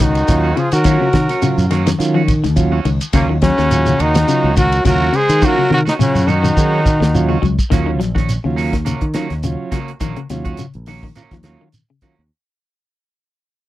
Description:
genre	afrobeat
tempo	105 BPM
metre	4/4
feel	swing 55% on 16ths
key	Eb dorian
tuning	A4 = 435 Hz
part	brilliant trombone	melody	0.0-7.4 s	Bb3 to Ab4	-17 LUFS	equal	none
part	clear baritone saxophone	second line	0.0-7.4 s	Bb2 to Ab3	-25 LUFS	left 3 dB	none
part	growling trumpet	second line	0.0-7.4 s	Db4 to C5	-26 LUFS	right 4 dB	none
part	clean electric guitar	arpeggios	0.0-12.2 s	C3 to Gb3	-21 LUFS	left 6 dB	none
part	electric guitar at the edge of break-up	stabs	0.0-12.2 s	Bb3 to Gb4	-26 LUFS	right 7 dB	none
part	fingered electric bass	bass	0.0-12.3 s	Bb1 to Eb3	-18 LUFS	equal	none
part	damped 70s drum kit	drums	0.0-12.2 s	hi-hat, kick drum, ride cymbal, snare drum, toms	-19 LUFS	equal	none
part	shekere	percussion	0.0-12.2 s	none	-23 LUFS	right 1 dB	none
part	combo organ	accompaniment	0.3-12.2 s	Gb3 to Ab4	-21 LUFS	right 5 dB	none
room	little or no reverb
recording	dry, close 1970s-style studio recording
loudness	-13 LUFS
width	side -15 dB against mid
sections	0.0-7.7 A section; 7.7-12.3 B section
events	drum fill 5.4-7.7; fade-out 7.7-12.3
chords	0.0 Ebm7

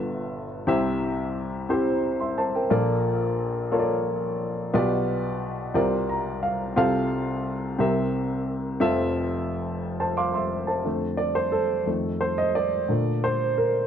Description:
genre	gospel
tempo	59 BPM (dotted quarters)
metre	6/8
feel	straight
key	F major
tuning	A4 = 440 Hz
part	warm baby grand piano	solo	0.0-13.9 s	F1 to D6	-23 LUFS	equal	none
room	light reverb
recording	worn, warbling old tape, cassette tape, warbly pitch drift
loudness	-23 LUFS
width	side -8 dB against mid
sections	0.0-10.9 A section; 10.9-13.9 B section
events	grand piano fill 5.8-6.8, 9.8-10.9; grand piano solo 10.9-13.9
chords	0.0 G13; 0.7 C; 2.7 Bbmaj7; 4.7 G7/B; 5.8 C9sus4; 6.8 F/C; 7.8 C7; 8.8 Fmaj7; 10.9 F6; 11.9 F7; 12.9 Bbmaj7

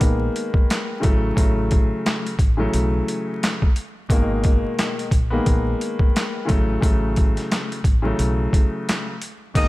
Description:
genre	hip hop, boom-bap hip-hop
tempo	88 BPM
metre	4/4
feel	swing 58% on 16ths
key	unclear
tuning	A4 = 438 Hz
part	dark upright piano	accompaniment	0.0-9.7 s	B2 to B3	-24 LUFS	left 1 dB	high-pass filter, low-pass filter
part	deep dub fingered electric bass	bass	0.0-9.7 s	G#1 to B1	-23 LUFS	equal	none
part	boom bap sampler-style drum kit	drums	0.0-9.7 s	crash cymbal, handclaps, hi-hat, kick drum, snare drum	-19 LUFS	equal	overdrive
part	breathy tenor saxophone	melody	9.6-9.7 s	D#5	-21 LUFS	left 1 dB	high-pass filter, low-pass filter
room	light reverb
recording	vinyl crackle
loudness	-18 LUFS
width	side -18 dB against mid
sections	0.0-9.6 A section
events	none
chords	0.0 G#madd9; 1.0 A6; 4.1 G#madd9; 6.5 A6

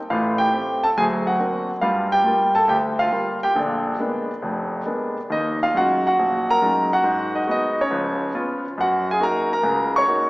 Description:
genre	solo jazz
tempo	138 BPM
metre	4/4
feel	swing 67% on 8ths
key	Eb minor from 5.3 s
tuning	A4 = 442 Hz
part	warm concert grand piano	solo	0.1-10.3 s	F1 to Db6	-18 LUFS	equal	none
room	wet church reverb, RT60 2.5 s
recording	recorded in a church or concert hall, small speaker sound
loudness	-18 LUFS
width	side -22 dB against mid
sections	0.0-5.3 A section; 5.3-10.3 B section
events	none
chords	0.1 Am7; 1.0 Daug7; 1.8 Gm7; 3.6 Bb7b9; 5.3 Ebm11; 7.0 Abm7; 7.9 Db7; 8.8 Gb6

